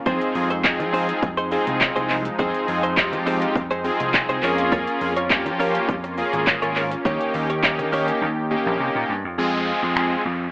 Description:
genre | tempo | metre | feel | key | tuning
dance-pop | 103 BPM | 4/4 | straight | F minor | A4 = 440 Hz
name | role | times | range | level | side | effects
soft supersaw | sustained chords | 0.0-9.4 s | Eb3 to G4 | -28 LUFS | equal | sidechain pumping
big bright polysynth | accompaniment | 0.1-10.2 s | Ab3 to Ab4 | -23 LUFS | equal | chorus, sidechain pumping
direct-recorded clean electric guitar | riff | 0.1-8.1 s | Bb3 to Db5 | -25 LUFS | right 1 dB | analog chorus
vintage slap bass | bass | 0.1-10.5 s | Ab1 to F3 | -28 LUFS | equal | sidechain pumping
pop drum kit | drums | 0.1-10.1 s | finger snaps, handclaps, hi-hat, kick drum, shaker | -22 LUFS | equal | overdrive
egg shaker | percussion | 0.1-8.2 s | none | barely audible | none | none
downlifter | sound effects | 9.4-10.5 s | none | -28 LUFS | equal | none
room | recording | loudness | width
light reverb | rough home demo mix, AM radio sound | -19 LUFS | side -26 dB against mid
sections
0.0-9.4 A section; 9.4-10.5 B section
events
silent gap 8.2-9.4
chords
0.1 Fm7; 4.4 Db6/F; 7.1 Eb7; 9.4 Fm

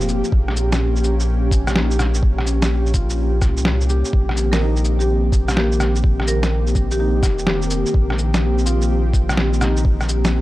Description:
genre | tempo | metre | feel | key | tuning
future garage | 126 BPM | 4/4 | swing 65% on 16ths | unclear | A4 = 437 Hz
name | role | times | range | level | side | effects
felt-muted upright piano | accompaniment | 0.0-10.4 s | Db3 to Bb4 | -31 LUFS | left 1 dB | vintage 12-bit sampler grit, sidechain pumping, analog delay
airy breathy pad | sustained chords | 0.0-10.4 s | Bb2 to G4 | -23 LUFS | equal | chorus, sidechain pumping
soft dub sub bass | bass | 0.0-10.4 s | F1 to C2 | -19 LUFS | equal | sidechain pumping
electronic shaker, cabasa, rim click and snare drum | drums | 0.0-10.3 s | none | -22 LUFS | equal | overdrive
electronic kick drum | drums | 0.3-10.0 s | none | -18 LUFS | equal | overdrive
marimba with medium hard mallets | melody | 4.5-7.5 s | G4 to Bb4 | -27 LUFS | right 1 dB | tape echo
room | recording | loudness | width
digital ambience | dry, gritty hardware recording, cassette tape | -16 LUFS | side -17 dB against mid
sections
0.0-10.4 A section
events
none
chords
0.0 Bbm69; 4.1 Cm7

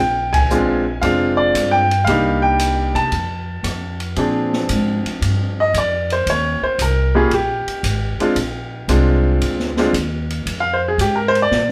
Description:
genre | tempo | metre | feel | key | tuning
jazz piano trio | 114 BPM | 4/4 | swing 69% on 8ths | Bb mixolydian | A4 = 442 Hz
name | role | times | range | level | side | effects
clear baby grand piano | melody | 0.0-11.7 s | F3 to A5 | -20 LUFS | equal | none
upright bass | bass | 0.0-11.7 s | F1 to C3 | -23 LUFS | equal | none
open jazz drum kit | drums | 0.3-11.7 s | hi-hat, kick drum, ride cymbal, rim click, snare drum | -28 LUFS | equal | none
room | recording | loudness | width
moderate large studio reverb, RT60 0.9 s | band playing live in one room | -18 LUFS | mono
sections
0.0-4.2 A section; 4.2-11.7 B section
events
band accent 0.2; grand piano solo 4.2-11.7; drum fill 11.5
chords
0.0 Bb7; 2.1 Cm7; 3.1 F; 4.2 Bb7; 6.3 Eb7; 8.4 Bb7; 10.5 Fm

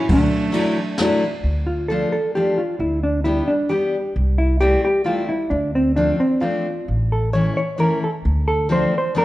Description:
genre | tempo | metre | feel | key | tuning
musette waltz | 132 BPM | 3/4 | rubato | D minor | A4 = 439 Hz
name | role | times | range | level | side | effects
hollow-body jazz guitar | melody | 0.0-9.2 s | F#3 to C#5 | -20 LUFS | equal | none
rich violin | second line | 0.0-1.0 s | A3 | -28 LUFS | right 4 dB | none
upright bass | bass | 0.1-8.8 s | A1 to D2 | -21 LUFS | equal | none
jazz brush drum kit | drums | 0.1-1.1 s | kick drum, ride cymbal, snare drum | -25 LUFS | equal | none
fingerpicked steel-string acoustic guitar | accompaniment | 0.5-9.2 s | E3 to G4 | -22 LUFS | left 2 dB | none
room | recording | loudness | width
light reverb | worn, warbling old tape, cassette tape, warbly pitch drift | -17 LUFS | side -16 dB against mid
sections
0.0-1.4 A section; 1.4-9.2 B section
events
none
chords
0.1 Dadd9; 1.4 Dm; 2.8 G/D; 4.2 C6; 5.5 Dm7; 6.9 A; 8.3 Dm7

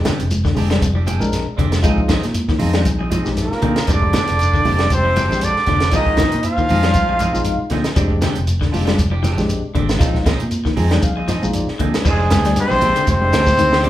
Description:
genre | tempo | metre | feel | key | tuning
afrobeat | 118 BPM | 4/4 | swing 55% on 16ths | F dorian | A4 = 440 Hz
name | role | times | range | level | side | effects
tine electric piano | accompaniment | 0.0-13.9 s | Ab3 to Ab5 | -26 LUFS | left 2 dB | slow stereo tremolo
fingered electric bass | bass | 0.0-13.9 s | F1 to Bb2 | -20 LUFS | equal | none
semi-hollow electric guitar | arpeggios | 0.1-13.9 s | D3 to Ab3 | -24 LUFS | left 4 dB | none
clean electric guitar | stabs | 0.1-13.9 s | F3 to Ab4 | -27 LUFS | right 4 dB | phaser
compact cocktail drum kit | drums | 0.1-13.9 s | crash cymbal, hi-hat, kick drum, snare drum | -20 LUFS | equal | none
congas | percussion | 0.1-13.9 s | none | -26 LUFS | right 1 dB | none
shekere | percussion | 0.1-13.7 s | none | -27 LUFS | left 1 dB | none
warm trumpet | melody | 3.4-7.7, 12.1-13.9 s | Ab4 to F5 | -18 LUFS | equal | none
brilliant trombone | second line | 3.4-7.7, 12.1-13.9 s | Ab3 to F4 | -25 LUFS | right 3 dB | none
raspy baritone saxophone | second line | 3.4-7.7, 12.1-13.9 s | Ab2 to F3 | -29 LUFS | left 3 dB | none
room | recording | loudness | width
moderate large studio reverb, RT60 0.8 s | band playing live in one room | -14 LUFS | side -13 dB against mid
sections
0.0-12.1 A section; 12.1-13.9 B section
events
tine electric piano fill 10.5-12.1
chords
0.0 Fm69; 1.8 Bb9sus4; 3.9 Fm69; 5.9 Bb9sus4; 8.0 Fm69; 10.0 Bb9sus4; 12.1 Fm69

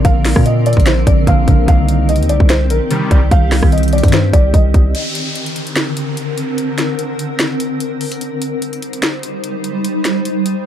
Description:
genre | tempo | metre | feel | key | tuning
hip hop, trap | 147 BPM | 4/4 | half-time | unclear | A4 = 439 Hz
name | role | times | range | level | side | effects
felt-muted upright piano | melody | 0.0-4.9 s | Bb4 to F5 | -20 LUFS | right 1 dB | low-pass filter, digital delay
concert harp | accompaniment | 0.0-5.0 s | D3 to C5 | -24 LUFS | left 1 dB | low-pass filter
granular cloud pad | sustained chords | 0.0-10.7 s | D3 to C5 | -19 LUFS | equal | built-in reverb
distorted 808-style bass | bass | 0.0-4.9 s | Bb1 to Bb2 | -14 LUFS | equal | distortion
trap drum kit | drums | 0.0-10.6 s | hi-hat, kick drum, rim click, snare drum | -14 LUFS | equal | none
big bright polysynth | stabs | 2.9-3.2 s | C3 to G3 | -19 LUFS | equal | none
downlifter | sound effects | 4.9-8.2 s | none | -26 LUFS | equal | none
room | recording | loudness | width
little or no reverb | dark, warm production | -12 LUFS | side -10 dB against mid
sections
0.0-4.9 A section; 4.9-10.7 B section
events
break 4.9-10.7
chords
0.0 Bbadd9; 1.7 Cm; 4.9 Bbadd9; 8.2 Cm

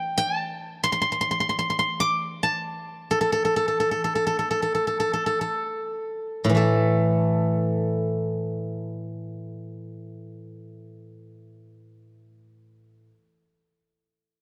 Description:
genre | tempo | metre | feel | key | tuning
chinese traditional, Chinese solo plucked strings | free time | none | none | A yu mode | A4 = 442 Hz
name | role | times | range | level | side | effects
steel-string zither | solo | 0.0-13.1 s | A2 to D6 | -26 LUFS | equal | none
room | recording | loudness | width
light reverb | dark, warm production | -25 LUFS | mono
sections
0.0-6.6 A section; 6.6-10.8 B section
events
slowing down 0.0-6.6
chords
none

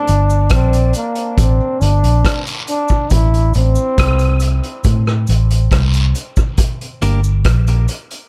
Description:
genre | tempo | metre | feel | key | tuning
dub reggae | 69 BPM | 4/4 | straight | G dorian | A4 = 440 Hz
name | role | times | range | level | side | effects
warm trombone | melody | 0.0-4.8 s | Bb3 to E4 | -22 LUFS | equal | dub echo
vintage muted fingered electric bass | bass | 0.1-7.9 s | G1 to A2 | -15 LUFS | equal | none
vintage drum kit | drums | 0.1-8.3 s | hi-hat, kick drum, rim click | -20 LUFS | equal | none
cabasa and guiro | percussion | 0.1-8.1 s | none | -32 LUFS | equal | dub echo
clean electric guitar | accompaniment | 7.0-7.2 s | Bb3 to Bb4 | -29 LUFS | equal | dub echo
room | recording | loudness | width
studio ambience | none | -15 LUFS | mono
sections
0.0-8.3 A section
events
break 0.0-6.6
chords
0.0 Gm; 3.1 Am; 6.6 Gm

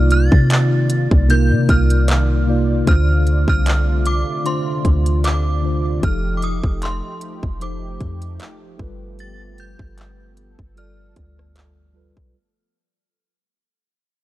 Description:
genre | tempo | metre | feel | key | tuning
contemporary R&B | 76 BPM | 4/4 | swing 54% on 16ths | unclear | A4 = 440 Hz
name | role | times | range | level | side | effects
mellow tine electric piano | accompaniment | 0.0-12.4 s | C3 to D5 | -22 LUFS | equal | slow stereo tremolo
warm analog pad | sustained chords | 0.0-12.3 s | C3 to D5 | -29 LUFS | right 1 dB | chorus, sidechain pumping
clean 808-style bass | bass | 0.0-12.3 s | F1 to C3 | -17 LUFS | equal | none
synth chime | melody | 0.1-11.9 s | C6 to A6 | -26 LUFS | right 1 dB | ensemble chorus, tremolo, digital delay
trap drum kit | drums | 0.1-12.3 s | handclaps, hi-hat, kick drum, rim click | -18 LUFS | equal | none
room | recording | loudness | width
little or no reverb | dark, warm production | -14 LUFS | side -15 dB against mid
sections
0.0-12.3 A section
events
fade-out 0.0-12.3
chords
0.0 Cm11; 2.9 Dm7; 6.0 F9; 8.8 G9

